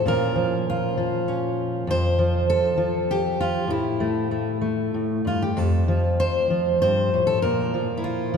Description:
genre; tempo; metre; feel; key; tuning
folk, solo fingerstyle acoustic guitar; 98 BPM; 3/4; rubato; unclear; A4 = 440 Hz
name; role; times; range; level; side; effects
fingerpicked steel-string acoustic guitar; solo; 0.0-8.4 s; F2 to C5; -20 LUFS; equal; none
room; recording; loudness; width
wet cathedral reverb, RT60 4.4 s; recorded in a church or concert hall; -20 LUFS; side -6 dB against mid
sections
0.0-8.4 A section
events
none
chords
0.1 Bbm; 1.9 N.C.; 3.7 A5; 5.6 Fadd9; 7.4 Bb5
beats
| 0.06 0.68 1.28 | 1.89 2.49 3.09 | 3.69 4.30 4.92 | 5.55 6.18 6.81 | 7.42 8.03

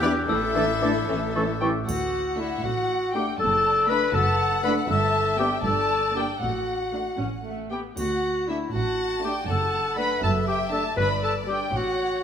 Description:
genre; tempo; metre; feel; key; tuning
cinematic, playful, whimsical film cue; 79 BPM (dotted quarters); 6/8; straight; D major; A4 = 440 Hz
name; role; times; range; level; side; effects
glockenspiel with soft plastic mallets; melody; 0.0-1.6 s; D6 to E6; -31 LUFS; left 5 dB; none
rich chamber violin section; melody; 0.0-12.2 s; C#4 to B5; -30 LUFS; left 2 dB; none
mellow clarinet; second line; 0.0-12.2 s; D4 to B4; -25 LUFS; left 1 dB; none
mellow silver concert flute; second line; 0.0-1.7 s; C#6 to D6; -34 LUFS; left 1 dB; none
warm chamber violin section; second line; 0.0-12.2 s; C#5 to A5; -32 LUFS; left 6 dB; none
warm oboe; second line; 0.0-1.7 s; A4 to B4; -35 LUFS; right 3 dB; none
mellow bassoon; accompaniment; 0.0-1.7 s; E3; -32 LUFS; right 2 dB; none
rich chamber viola section; accompaniment; 0.0-11.7 s; E3 to D4; -32 LUFS; right 1 dB; none
mellow French horn section; sustained chords; 0.0-1.7 s; A3 to D4; -32 LUFS; left 3 dB; none
clear chamber double bass section; bass; 0.0-12.2 s; F#1 to E2; -31 LUFS; right 3 dB; none
rich chamber cello section; bass; 0.0-12.2 s; D2 to A4; -32 LUFS; right 2 dB; none
triangle; percussion; 1.9-2.9, 8.0-8.9 s; none; -43 LUFS; right 1 dB; none
room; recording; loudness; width
moderate scoring stage reverb, RT60 1.9 s; none; -22 LUFS; side -8 dB against mid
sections
0.0-1.9 A section; 1.9-12.2 B section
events
none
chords
0.3 Asus4; 1.1 A; 1.9 D; 3.4 D/F#; 4.9 G; 5.6 Gm; 6.4 D/A; 7.2 N.C.; 8.0 D; 9.5 D/F#; 11.0 G5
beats
| 0.28 1.08 | 1.88 2.64 | 3.39 4.14 | 4.88 5.64 | 6.41 7.19 | 7.97 8.73 | 9.48 10.23 | 10.97 11.74

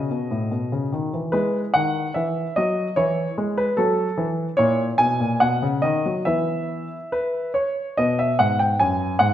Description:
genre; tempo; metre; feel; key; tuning
classical-period piano sonatina; 73 BPM; 2/4; straight; E major; A4 = 439 Hz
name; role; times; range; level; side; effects
clear baby grand piano; solo; 0.0-9.3 s; F#2 to G#5; -20 LUFS; equal; none
room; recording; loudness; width
wet recital hall reverb, RT60 1.4 s; none; -20 LUFS; side -11 dB against mid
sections
0.0-8.0 A section; 8.0-9.3 B section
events
none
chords
0.0 B; 1.4 E; 3.8 F#m7; 4.6 A#m7b5; 5.4 B; 6.3 E5; 8.0 B5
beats
0.51 | 1.35 2.17 | 2.98 3.79 | 4.60 5.43 | 6.27 7.13 | 7.98 8.80

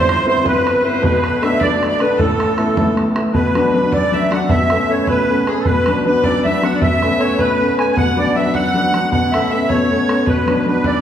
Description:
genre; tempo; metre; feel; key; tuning
celtic folk, Celtic jig; 104 BPM (dotted quarters); 6/8; straight; A minor, B minor from 3.3 s; A4 = 439 Hz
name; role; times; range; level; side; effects
musette accordion; melody; 0.0-11.0 s; G#4 to G#5; -19 LUFS; right 2 dB; none
bright fiddle; second line; 0.0-11.0 s; G#4 to F#5; -22 LUFS; left 1 dB; none
bright upright piano; accompaniment; 0.0-11.0 s; G1 to E4; -17 LUFS; left 2 dB; none
bodhran; percussion; 0.1-10.9 s; none; -22 LUFS; right 2 dB; none
room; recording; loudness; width
wet recital hall reverb, RT60 1.7 s; heard from further back in the room; -13 LUFS; side -9 dB against mid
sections
0.0-3.3 A section; 3.3-11.0 B section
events
none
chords
0.0 Cmaj7; 1.0 Bm7; 2.2 Asus2; 3.3 Bm; 4.5 Aadd9/B; 5.7 Bm; 6.8 Aadd9/B; 8.0 Bm; 9.1 Aadd9/B; 10.3 Bm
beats
0.45 | 1.03 1.61 | 2.19 2.77 | 3.35 3.92 | 4.50 5.08 | 5.66 6.24 | 6.81 7.39 | 7.97 8.54 | 9.12 9.70 | 10.27 10.85

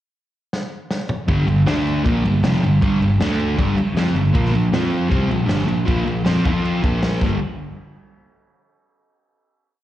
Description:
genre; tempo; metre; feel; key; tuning
garage rock duo or trio; 158 BPM; 4/4; straight; G minor; A4 = 441 Hz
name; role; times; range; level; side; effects
vintage drum kit; drums; 0.5-7.3 s; crash cymbal, kick drum, snare drum, toms; -23 LUFS; equal; none
fuzz guitar; riff; 1.3-7.4 s; F2 to F4; -18 LUFS; equal; distortion
picked electric bass; bass; 1.3-7.4 s; F1 to F2; -23 LUFS; equal; none
room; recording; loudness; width
moderate lush hall reverb, RT60 1.6 s, small room ambience; live gig heard through the venue's PA, cassette tape, club reverb; -16 LUFS; side -13 dB against mid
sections
0.0-1.3 pickup bar; 1.3-7.4 riff; 7.4-8.9 final hit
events
drum fill 0.5-1.3, 7.2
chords
0.0 N.C.; 1.3 G5; 1.7 D5; 2.0 Gm; 3.2 D5; 3.6 G5; 4.3 Bb5; 4.7 F5; 5.1 Bb5; 6.4 F5; 6.8 Bb5; 7.2 G5; 7.4 N.C.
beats
0.15 0.53 0.91 | 1.29 1.67 2.05 2.43 | 2.81 3.19 3.58 3.96 | 4.34 4.72 5.11 5.49 | 5.87 6.25 6.63 7.01

